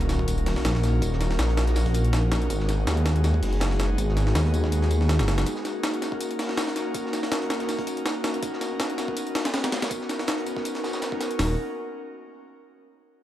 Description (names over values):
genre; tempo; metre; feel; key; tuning
drum and bass, jungle; 162 BPM; 4/4; swing 54% on 16ths; Eb minor; A4 = 438 Hz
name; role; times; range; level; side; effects
airy breathy pad; sustained chords; 0.0-11.5 s; Ab3 to Bb4; -29 LUFS; left 1 dB; chorus, vintage 12-bit sampler grit
detuned saw bass; bass; 0.0-5.5, 11.4-11.6 s; Eb1 to Eb2; -22 LUFS; equal; tube saturation
breakbeat sampler-style drum kit; drums; 0.0-11.5 s; hi-hat, kick drum, snare drum; -29 LUFS; equal; high-pass filter on snare, high-pass filter on hats, high-pass filter on kick
impact; sound effects; 0.0-1.0 s; none; -32 LUFS; equal; none
crunchy breakbeat drum kit; drums; 0.1-11.3 s; hi-hat, snare drum, tambourine; -38 LUFS; right 2 dB; high-pass filter on hats, high-pass filter on snare, high-pass filter on perc, high-pass filter on room
room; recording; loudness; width
light reverb; dark, warm production; -23 LUFS; side -13 dB against mid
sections
0.0-11.4 A section; 11.4-12.9 B section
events
impact 0.0-1.0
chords
0.0 Ebm7; 2.5 Abm7; 5.5 Ebm7/Bb; 8.4 Bmaj9; 11.4 Ebm7